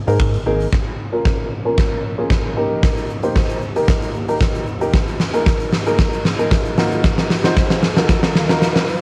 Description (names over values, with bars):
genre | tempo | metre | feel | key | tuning
dance-pop | 114 BPM | 4/4 | straight | unclear | A4 = 440 Hz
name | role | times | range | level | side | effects
warm grand piano | accompaniment | 0.1-8.8 s | Bb3 to C5 | -23 LUFS | equal | sidechain pumping, low-pass filter, cassette tape
chorused synth bass | bass | 0.1-0.7 s | Ab1 to Ab2 | -21 LUFS | equal | sidechain pumping
huge arena drum kit | drums | 0.1-9.0 s | finger snaps, hi-hat, kick drum, shaker, snare drum | -19 LUFS | equal | cassette tape
ethereal airy pad | sustained chords | 1.2-9.0 s | Eb2 to F5 | -32 LUFS | equal | none
riser | sound effects | 4.0-9.0 s | none | -34 LUFS | equal | none
room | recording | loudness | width
moderate booth ambience, RT60 0.2 s | home recording on cassette | -18 LUFS | mono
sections
0.7-9.0 A section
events
build-up 0.7-9.0; drum fill 0.7-9.0; filter sweep 0.7-9.0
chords
0.0 Absus2; 0.7 Bbm; 2.6 Eb; 4.9 Absus2; 6.8 Ebmadd9